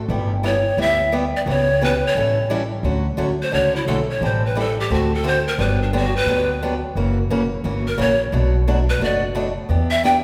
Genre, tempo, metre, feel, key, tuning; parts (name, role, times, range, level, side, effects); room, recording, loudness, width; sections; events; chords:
acoustic string swing (jazz manouche); 175 BPM; 4/4; swing 62% on 8ths; D major; A4 = 441 Hz
picked steel-string acoustic guitar; accompaniment; 0.1-10.2 s; B2 to A4; -25 LUFS; equal
upright bass; bass; 0.1-10.2 s; F#1 to E2; -24 LUFS; equal
breathy pan flute; melody; 0.5-10.2 s; D4 to G5; -22 LUFS; equal
wet recital hall reverb, RT60 1.6 s; recorded in a church or concert hall; -20 LUFS; mono
0.0-2.8 A section; 2.8-10.2 B section
pan flute solo 2.8-10.2
0.1 G6; 1.5 C#m7b5; 2.2 A7; 2.8 Dmaj7; 4.2 Am7; 4.9 D7; 5.6 Gmaj7; 7.0 F#7; 8.3 Bm7; 9.7 Em7